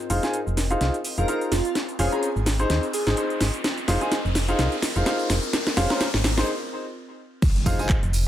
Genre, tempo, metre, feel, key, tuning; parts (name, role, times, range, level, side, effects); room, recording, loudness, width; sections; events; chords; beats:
piano house; 127 BPM; 4/4; swing 56% on 16ths; F minor; A4 = 440 Hz
house drum kit; drums; 0.0-8.2 s; cabasa, crash cymbal, handclaps, hi-hat, snare drum; -26 LUFS; equal
riser and impact; sound effects; 1.1-8.3 s; -32 LUFS; equal
warbly tape-like pad; texture; 0.0-6.5 s; C4 to Eb5; -35 LUFS; left 1 dB; chorus, built-in reverb, phaser, sidechain pumping
clear upright piano; riff; 0.1-7.9 s; Db4 to Bb5; -27 LUFS; left 1 dB; sidechain pumping, low-pass filter, digital delay
solid FM bass; bass; 0.1-8.3 s; F1 to Eb2; -24 LUFS; equal; sidechain pumping
airy dreamy lead; melody; 1.2-3.1 s; F4 to Bb4; -29 LUFS; right 2 dB; chorus, digital delay
electronic kick drum; drums; 7.4-8.0 s; -21 LUFS; equal
tambourine; percussion; 7.4-8.2 s; -36 LUFS; right 5 dB
moderate digital room reverb, RT60 0.9 s; -21 LUFS; side -12 dB against mid
0.0-7.4 A section
build-up 0.0-7.4; drum fill 0.0-6.5; riser 1.1-6.5; break 6.5-7.4; impact 7.4-8.3
0.0 Fm7; 1.8 Dbmaj7; 2.5 Ab; 3.6 Fm7; 5.5 Dbmaj7; 6.2 Ab; 7.4 Fm7
0.34 0.81 1.28 | 1.75 2.23 2.70 3.17 | 3.64 4.12 4.59 5.06 | 5.53 6.01 6.48 6.95 | 7.42 7.90